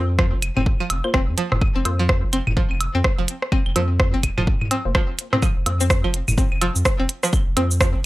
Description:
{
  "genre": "minimal techno",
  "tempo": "126 BPM",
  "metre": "4/4",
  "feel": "swing 60% on 16ths",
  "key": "unclear",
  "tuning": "A4 = 444 Hz",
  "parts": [
    { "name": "filtered dub chord stab", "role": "stabs", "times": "0.0-7.6 s", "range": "Bb3 to C5", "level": "-30 LUFS", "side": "left 1 dB", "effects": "chorus, tape echo" },
    { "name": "saturated sub bass", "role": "bass", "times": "0.0-8.1 s", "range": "F1 to F2", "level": "-22 LUFS", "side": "equal", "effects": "sidechain pumping" },
    { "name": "string-like resonator pluck", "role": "riff", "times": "0.2-7.8 s", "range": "F3 to C4", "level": "-26 LUFS", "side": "equal", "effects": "chorus, sidechain pumping, tape echo" },
    { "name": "electronic kick drum", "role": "drums", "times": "0.2-7.9 s", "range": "none", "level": "-20 LUFS", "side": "equal", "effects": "small room ambience" },
    { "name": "minimal click drum kit", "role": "drums", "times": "0.2-7.9 s", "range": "hi-hat, rim click, shaker", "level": "-22 LUFS", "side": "right 1 dB", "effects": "small room ambience" },
    { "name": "electronic claves, toms and woodblock", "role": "percussion", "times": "0.4-7.7 s", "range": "none", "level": "-26 LUFS", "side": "equal", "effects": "small room ambience, tape echo" }
  ],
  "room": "little or no reverb",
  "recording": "dry, gritty hardware recording",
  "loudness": "-18 LUFS",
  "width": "side -18 dB against mid",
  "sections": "0.0-8.1 A section",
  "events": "none",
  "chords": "none"
}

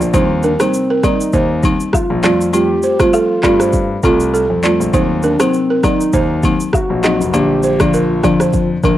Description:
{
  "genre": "afrobeats",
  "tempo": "100 BPM",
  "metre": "4/4",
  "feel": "swing 55% on 16ths",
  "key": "unclear",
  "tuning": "A4 = 440 Hz",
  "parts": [
    { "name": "buzzing marimba with medium mallets", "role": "accompaniment", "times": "0.0-9.0 s", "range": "D3 to F4", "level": "-17 LUFS", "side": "left 1 dB", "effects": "cassette tape" },
    { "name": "warm concert grand piano", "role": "bass", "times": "0.0-9.0 s", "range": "F1 to G2", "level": "-18 LUFS", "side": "left 2 dB", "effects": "none" },
    { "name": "afro-pop drum kit", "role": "drums", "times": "0.0-9.0 s", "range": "handclaps, kick drum, rim click, shaker", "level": "-18 LUFS", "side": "equal", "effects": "overdrive" },
    { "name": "balafon", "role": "riff", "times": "0.1-8.9 s", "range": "A4 to Eb5", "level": "-18 LUFS", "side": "right 4 dB", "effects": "cassette tape" },
    { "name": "agogo bells and woodblock", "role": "percussion", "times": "0.1-9.0 s", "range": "none", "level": "-24 LUFS", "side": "left 4 dB", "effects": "none" },
    { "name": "soft octave-layered synth lead", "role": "melody", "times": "0.4-8.7 s", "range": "C4 to G4", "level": "-19 LUFS", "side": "equal", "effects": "chorus, cassette tape, tape echo" }
  ],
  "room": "light reverb, small room ambience",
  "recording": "home recording on cassette",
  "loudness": "-12 LUFS",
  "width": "side -13 dB against mid",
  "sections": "0.0-9.0 A section",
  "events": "none",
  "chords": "0.1 Eb6; 2.2 Fadd9; 4.9 Ebm6; 7.3 Bb"
}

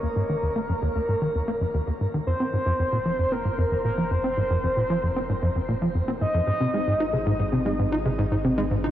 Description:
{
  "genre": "ambient, sequencer-driven space music",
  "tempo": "114 BPM",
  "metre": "4/4",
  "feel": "straight",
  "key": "unclear",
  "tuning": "A4 = 439 Hz",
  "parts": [
    { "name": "soft octave-layered synth lead", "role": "melody", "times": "0.0-7.5 s", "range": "Bb4 to Eb5", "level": "-27 LUFS", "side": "equal", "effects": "chorus, shimmer reverb, tape echo" },
    { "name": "tight sequencer bass", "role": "riff", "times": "0.0-8.9 s", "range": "Eb2 to Eb4", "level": "-24 LUFS", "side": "equal", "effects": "lush chorus, tape echo" },
    { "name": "round analog bass", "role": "bass", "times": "0.0-8.9 s", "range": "Eb1 to Ab1", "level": "-37 LUFS", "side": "equal", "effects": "tube saturation" },
    { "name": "warbly dusty pluck", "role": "arpeggios", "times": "6.6-8.9 s", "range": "C4 to Ab4", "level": "-28 LUFS", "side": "left 2 dB", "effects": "chorus, auto-pan, shimmer reverb, tape echo" }
  ],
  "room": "wet huge ambient reverb, RT60 8.6 s",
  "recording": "worn, warbling old tape, cassette tape, warbly pitch drift",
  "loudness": "-22 LUFS",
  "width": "side -12 dB against mid",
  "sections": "0.0-8.9 A section",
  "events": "fade-in on analog synth bass 0.0-8.9",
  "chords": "0.0 Eb5; 2.3 F5; 6.5 Ab"
}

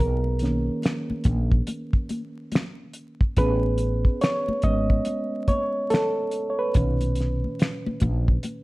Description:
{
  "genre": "R&B, neo-soul",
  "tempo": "71 BPM",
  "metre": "4/4",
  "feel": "swing 61% on 16ths",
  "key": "B major",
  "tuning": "A4 = 444 Hz",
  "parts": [
    { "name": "reed electric piano", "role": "accompaniment", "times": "0.0-8.6 s", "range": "A#2 to D#5", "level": "-26 LUFS", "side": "right 1 dB", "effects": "overdrive, spring reverb" },
    { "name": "woody fretless electric bass", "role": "bass", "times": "0.0-8.4 s", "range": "G#1 to B1", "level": "-24 LUFS", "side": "equal", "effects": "analog chorus" },
    { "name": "congas", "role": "percussion", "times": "0.2-8.6 s", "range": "none", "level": "-33 LUFS", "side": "left 2 dB", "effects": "none" },
    { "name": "cloth-damped thuddy drum kit", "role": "drums", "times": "0.4-8.6 s", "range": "finger snaps, hi-hat, kick drum, snare drum", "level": "-22 LUFS", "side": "equal", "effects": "none" }
  ],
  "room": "light reverb",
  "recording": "vinyl crackle",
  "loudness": "-22 LUFS",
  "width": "side -20 dB against mid",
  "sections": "0.0-8.6 A section",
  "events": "reed electric piano solo 0.0-8.6",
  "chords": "0.0 Bmaj9; 3.4 Amaj9; 6.7 Bmaj9"
}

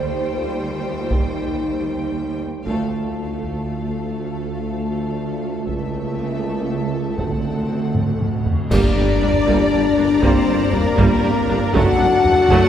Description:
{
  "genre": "cinematic, epic orchestral film score",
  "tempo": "119 BPM",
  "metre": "3/4",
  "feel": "straight",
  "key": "D phrygian",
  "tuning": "A4 = 440 Hz",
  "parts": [
    { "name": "clear studio violin section", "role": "melody", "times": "0.0-12.7 s", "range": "Bb4 to G5", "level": "-31 LUFS", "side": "left 3 dB", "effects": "none" },
    { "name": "rich symphonic violin section", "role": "second line", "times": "0.0-12.7 s", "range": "A4 to Bb5", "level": "-31 LUFS", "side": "left 2 dB", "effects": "none" },
    { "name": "clear symphonic viola section", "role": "accompaniment", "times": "0.0-12.7 s", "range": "F#3 to G4", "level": "-26 LUFS", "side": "right 1 dB", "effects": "none" },
    { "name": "mellow French horn section", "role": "sustained chords", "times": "0.0-12.7 s", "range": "A3 to C5", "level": "-22 LUFS", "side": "left 4 dB", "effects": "none" },
    { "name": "rich symphonic double bass section", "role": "bass", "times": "0.0-12.6 s", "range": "F#1 to Eb2", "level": "-27 LUFS", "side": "right 2 dB", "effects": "none" },
    { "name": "warm symphonic cello section", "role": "bass", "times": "0.0-12.6 s", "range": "C#2 to G2", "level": "-27 LUFS", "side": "right 2 dB", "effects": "none" },
    { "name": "taiko ensemble", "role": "drums", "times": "1.1-12.7 s", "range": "none", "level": "-24 LUFS", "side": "right 1 dB", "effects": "none" },
    { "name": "warm tuba", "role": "bass", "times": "2.7-12.6 s", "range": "F#1 to D2", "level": "-26 LUFS", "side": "right 2 dB", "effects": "none" },
    { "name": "cymbal swell, clash cymbals and concert bass drum", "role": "percussion", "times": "5.7-9.7 s", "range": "none", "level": "-27 LUFS", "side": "equal", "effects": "none" },
    { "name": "mellow small flute group", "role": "second line", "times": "8.7-12.7 s", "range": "Bb4 to F#5", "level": "-27 LUFS", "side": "equal", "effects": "none" },
    { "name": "rich symphonic string section", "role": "sustained chords", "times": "8.7-12.7 s", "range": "D4 to D5", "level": "-29 LUFS", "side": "left 1 dB", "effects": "none" },
    { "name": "mellow trumpet section", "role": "stabs", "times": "8.7-12.7 s", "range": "Bb4 to F#5", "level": "-25 LUFS", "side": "left 2 dB", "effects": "none" }
  ],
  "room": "wet cathedral reverb, RT60 4.3 s",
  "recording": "recorded in a church or concert hall",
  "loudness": "-17 LUFS",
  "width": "side -10 dB against mid",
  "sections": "0.0-2.7 A section; 2.7-8.7 B section; 8.7-12.7 C section",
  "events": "band accent 2.7-3.2, 8.7-9.2; drum fill 8.0-8.7",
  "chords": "0.0 Cm/Eb; 2.7 Dm; 5.7 A/C#; 7.2 D7; 8.7 Gm; 11.7 D/F#"
}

